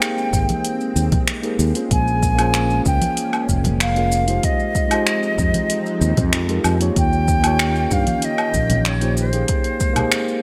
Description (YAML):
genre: sunset chillout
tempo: 95 BPM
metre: 4/4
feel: straight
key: Bb dorian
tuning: A4 = 444 Hz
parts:
  - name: bright wooden flute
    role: melody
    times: 0.0-10.4 s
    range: C5 to Ab5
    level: -26 LUFS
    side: equal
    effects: delay
  - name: mellow tine electric piano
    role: accompaniment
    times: 0.0-10.4 s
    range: Ab3 to Db5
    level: -26 LUFS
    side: equal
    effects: delay
  - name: soft string machine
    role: sustained chords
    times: 0.0-10.4 s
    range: Eb3 to G5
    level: -31 LUFS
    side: equal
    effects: phaser, ensemble chorus
  - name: deep house drum kit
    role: drums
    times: 0.0-10.4 s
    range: finger snaps, hi-hat, shaker, woodblock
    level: -26 LUFS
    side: equal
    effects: overdrive, gated reverb
  - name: fretless electric bass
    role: bass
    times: 0.3-9.4 s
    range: F1 to G2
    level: -22 LUFS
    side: equal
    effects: none
  - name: electronic kick drum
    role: drums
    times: 0.3-9.9 s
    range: none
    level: -24 LUFS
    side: equal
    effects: overdrive
  - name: congas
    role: percussion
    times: 0.5-10.1 s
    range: none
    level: -27 LUFS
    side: equal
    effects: none
room: light reverb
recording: bright 1980s-style digital production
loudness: -19 LUFS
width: mono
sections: 0.0-10.4 A section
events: none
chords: 0.0 Abmaj7; 1.9 Bbm7; 4.4 Fm7; 7.0 Eb7; 9.5 Abmaj7